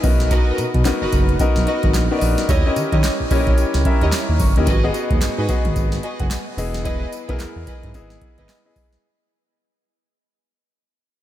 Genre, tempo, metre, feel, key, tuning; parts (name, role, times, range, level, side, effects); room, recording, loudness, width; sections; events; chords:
R&B, new jack swing; 110 BPM; 4/4; swing 60% on 16ths; G# minor; A4 = 440 Hz
clear grand piano; accompaniment; 0.0-9.1 s; B3 to C#6; -23 LUFS; left 3 dB
smooth gliding synth bass; bass; 0.0-8.5 s; E1 to D#3; -21 LUFS; equal
booming analog drum machine; drums; 0.0-9.0 s; handclaps, hi-hat, kick drum, snare drum, tambourine; -20 LUFS; equal
dark studio string section; stabs; 0.3-8.5 s; E4 to D#5; -26 LUFS; right 2 dB; ping-pong delay
group handclap; percussion; 0.9-8.6 s; barely audible
light reverb, studio reverb; -16 LUFS; side -12 dB against mid
0.0-4.7 A section; 4.7-9.0 B section
grand piano fill 3.0-4.7; fade-out 4.7-9.0
0.0 Bmaj7; 2.5 D#7b9; 4.7 G#m7; 6.6 Emaj7